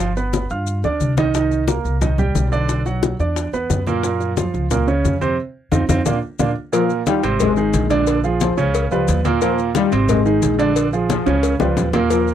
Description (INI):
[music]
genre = latin, salsa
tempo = 178 BPM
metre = 4/4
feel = straight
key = Eb major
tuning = A4 = 442 Hz
[part]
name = warm upright piano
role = accompaniment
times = 0.0-12.3 s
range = Bb2 to F6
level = -19 LUFS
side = right 5 dB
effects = none
[part]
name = upright bass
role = bass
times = 0.0-12.3 s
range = G1 to G2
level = -21 LUFS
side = equal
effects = none
[part]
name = bongos and cowbell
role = percussion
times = 0.0-12.3 s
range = none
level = -25 LUFS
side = left 8 dB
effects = none
[part]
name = congas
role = percussion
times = 0.0-12.3 s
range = none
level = -24 LUFS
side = left 3 dB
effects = none
[part]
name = maracas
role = percussion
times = 0.0-12.3 s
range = none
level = -33 LUFS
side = left 20 dB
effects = none
[part]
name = warm trombone section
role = second line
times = 6.7-12.3 s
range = F3 to Ab3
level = -21 LUFS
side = left 12 dB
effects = slapback echo
[sound]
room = light reverb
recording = dry, close 1970s-style studio recording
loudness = -16 LUFS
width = side -10 dB against mid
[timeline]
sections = 0.0-6.7 A section; 6.7-12.3 B section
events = drum fill 0.3-1.3, 5.7-6.7, 11.3-12.1; band accent 5.4-6.7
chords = 0.0 G7; 1.3 Cm7; 2.7 Bm; 3.4 Esus2; 4.0 Gbmaj7; 5.4 F5; 6.1 Bb; 6.7 Ebadd9; 7.4 Ab; 8.1 Bb7; 8.7 Db7; 9.4 Ebadd9; 10.1 Ab; 10.8 Bb7; 11.4 Db7